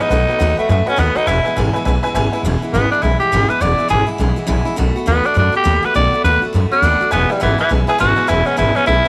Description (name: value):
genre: rockabilly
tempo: 205 BPM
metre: 4/4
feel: swing 62% on 8ths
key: E major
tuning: A4 = 441 Hz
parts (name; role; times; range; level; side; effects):
- raspy tenor saxophone; melody; 0.0-9.1 s; E3 to D5; -18 LUFS; equal; none
- picked steel-string acoustic guitar; accompaniment; 0.0-9.1 s; E2 to F#4; -24 LUFS; equal; none
- tack piano; accompaniment; 0.0-2.4, 7.1-9.1 s; B4 to G#5; -26 LUFS; equal; none
- upright bass; bass; 0.0-9.1 s; E1 to F#2; -20 LUFS; equal; none
room: light reverb, studio ambience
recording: none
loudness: -16 LUFS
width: mono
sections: 0.0-2.4 A section; 2.4-9.1 B section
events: tenor saxophone solo 2.4-9.1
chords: 0.1 B7; 1.3 E; 4.8 B7; 7.1 E